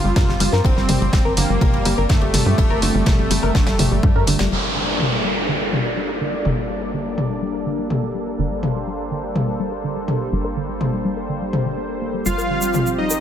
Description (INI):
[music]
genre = melodic techno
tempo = 124 BPM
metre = 4/4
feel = straight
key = G minor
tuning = A4 = 440 Hz
[part]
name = soft supersaw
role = melody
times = 0.0-4.4, 12.3-13.2 s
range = A3 to F4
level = -24 LUFS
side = right 1 dB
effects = sidechain pumping, dub echo
[part]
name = lush unison pad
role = sustained chords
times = 0.0-13.2 s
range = F3 to D5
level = -26 LUFS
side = equal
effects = chorus, phaser, sidechain pumping
[part]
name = tight sequenced synth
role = arpeggios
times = 0.0-13.2 s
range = D3 to Bb4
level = -26 LUFS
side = left 2 dB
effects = chorus, sidechain pumping, dub echo
[part]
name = tight sequencer bass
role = bass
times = 0.0-13.2 s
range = G1 to G2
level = -25 LUFS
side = equal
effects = sidechain pumping
[part]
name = electronic kick drum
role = drums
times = 0.2-4.1 s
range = none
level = -19 LUFS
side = equal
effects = none
[part]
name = punchy analog drum machine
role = drums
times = 0.2-12.8 s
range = hi-hat, toms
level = -22 LUFS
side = left 1 dB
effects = low-pass filter on hats, low-pass filter on toms, low-pass filter on room
[part]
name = tight funk drum kit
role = drums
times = 0.2-4.5 s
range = ride cymbal, snare drum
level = -30 LUFS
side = left 2 dB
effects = high-pass filter on cymbals, high-pass filter on snare, high-pass filter on room
[part]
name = downlifter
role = sound effects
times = 4.5-8.4 s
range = none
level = -24 LUFS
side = equal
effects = none
[part]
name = big bright polysynth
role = second line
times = 12.3-13.2 s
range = Eb5 to F5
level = -26 LUFS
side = left 1 dB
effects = chorus, sidechain pumping
[part]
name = egg shaker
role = percussion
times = 12.3-13.2 s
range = none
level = -27 LUFS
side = right 2 dB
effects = none
[sound]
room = light reverb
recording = none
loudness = -17 LUFS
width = side -9 dB against mid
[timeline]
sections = 0.0-4.5 A section; 4.5-13.2 B section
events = none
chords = 0.0 Fsus2/G; 4.5 Gmadd9; 12.3 Fsus2/G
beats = 0.16 | 0.65 1.13 1.61 2.10 | 2.58 3.06 3.55 4.03 | 4.52 5.00 5.48 5.97 | 6.45 6.94 7.42 7.90 | 8.39 8.87 9.36 9.84 | 10.32 10.81 11.29 11.78 | 12.26 12.74